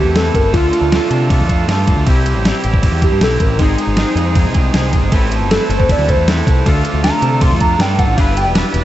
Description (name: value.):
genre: indie rock.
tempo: 157 BPM.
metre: 4/4.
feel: straight.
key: unclear.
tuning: A4 = 436 Hz.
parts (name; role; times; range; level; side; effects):
hollow square lead; melody; 0.0-8.6 s; Eb4 to C6; -18 LUFS; right 1 dB; chorus, analog delay.
biting overdriven guitar; riff; 0.0-8.8 s; Ab2 to B4; -22 LUFS; right 8 dB; wide subtle chorus, analog delay.
twangy electric guitar; riff; 0.0-8.8 s; C3 to B4; -22 LUFS; left 6 dB; analog chorus.
growling picked electric bass; bass; 0.0-8.8 s; E1 to C3; -16 LUFS; equal; overdrive.
detuned 8-bit digital drum machine; drums; 0.2-8.8 s; kick drum, ride cymbal, snare drum; -16 LUFS; equal; none.
soft string machine; sustained chords; 3.6-8.8 s; A3 to E6; -29 LUFS; left 2 dB; ensemble chorus.
room: light reverb.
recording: dark, warm production, nothing above 8.0 kHz.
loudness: -11 LUFS.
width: side -13 dB against mid.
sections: 0.0-8.8 A section.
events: analog synth lead solo 0.0-8.8.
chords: 0.0 Amadd9; 0.5 Dm; 2.1 C; 3.6 Ab; 5.1 Amadd9; 6.7 Dm; 8.2 G6.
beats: 0.16 | 0.54 0.92 1.30 1.69 | 2.07 2.45 2.83 3.22 | 3.60 3.98 4.36 4.75 | 5.13 5.51 5.89 6.28 | 6.66 7.04 7.42 7.80 | 8.18 8.56.